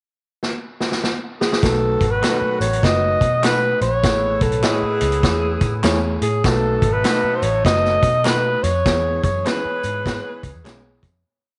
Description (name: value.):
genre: uptempo 1960s-style soul.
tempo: 100 BPM.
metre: 4/4.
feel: swing 62% on 8ths.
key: B mixolydian.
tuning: A4 = 440 Hz.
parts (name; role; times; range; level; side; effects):
vintage drum kit; drums; 0.4-11.1 s; hi-hat, kick drum, snare drum; -24 LUFS; equal; none.
warm alto saxophone; melody; 1.4-10.7 s; G#4 to D#5; -22 LUFS; equal; none.
warm horn section; second line; 1.6-11.0 s; D#3 to B4; -34 LUFS; equal; none.
barky tine electric piano; accompaniment; 1.6-11.1 s; A2 to D#5; -28 LUFS; equal; none.
vintage muted picked electric bass; bass; 1.6-11.2 s; F#1 to B2; -26 LUFS; equal; none.
tambourine and handclaps; percussion; 1.6-11.1 s; none; -37 LUFS; equal; none.
electric guitar through a small old amp; stabs; 2.2-10.8 s; G#3 to C#5; -31 LUFS; equal; none.
room: moderate spring reverb, RT60 2.2 s.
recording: nothing above 10.6 kHz.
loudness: -19 LUFS.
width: mono.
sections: 0.0-1.6 pickup bar; 1.6-11.3 verse.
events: drum fill 0.4-1.6; fade-out 8.9-11.3.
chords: 0.0 N.C.; 1.6 B7; 4.0 Amaj7; 6.4 B7; 8.9 E6.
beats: 0.42 1.02 | 1.62 2.23 2.83 3.43 | 4.04 4.64 5.24 5.84 | 6.45 7.05 7.65 8.26 | 8.86 9.46 10.06 10.66.